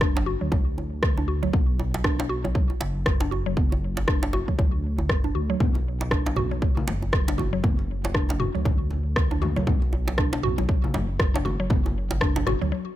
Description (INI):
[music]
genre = afro house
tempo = 118 BPM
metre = 4/4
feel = swing 59% on 16ths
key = B minor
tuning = A4 = 440 Hz
[part]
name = mallet-like synth pluck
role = arpeggios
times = 0.0-12.9 s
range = F#3 to F#4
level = -30 LUFS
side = equal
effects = chorus, sidechain pumping, tape echo
[part]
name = dark detuned saw bass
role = bass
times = 0.0-12.7 s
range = F#1 to D2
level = -28 LUFS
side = equal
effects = sidechain pumping
[part]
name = deep house drum kit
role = drums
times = 0.0-12.6 s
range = rim click, toms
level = -29 LUFS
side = equal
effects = none
[part]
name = electronic kick drum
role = drums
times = 0.0-12.3 s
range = none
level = -24 LUFS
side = equal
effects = none
[part]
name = djembe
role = percussion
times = 0.2-12.6 s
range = none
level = -32 LUFS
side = right 1 dB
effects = none
[part]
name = congas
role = percussion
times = 5.6-12.7 s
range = none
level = -33 LUFS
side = left 3 dB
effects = none
[sound]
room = digital ambience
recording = none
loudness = -22 LUFS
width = side -14 dB against mid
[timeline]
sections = 0.0-13.0 A section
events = filter sweep on synth arpeggio sound 0.0-13.0; break 12.7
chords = 0.0 Bm/F#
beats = 0.01 0.52 1.03 | 1.54 2.04 2.55 3.06 | 3.57 4.08 4.59 5.09 | 5.60 6.11 6.62 7.13 | 7.64 8.15 8.65 9.16 | 9.67 10.18 10.69 11.20 | 11.71 12.21 12.72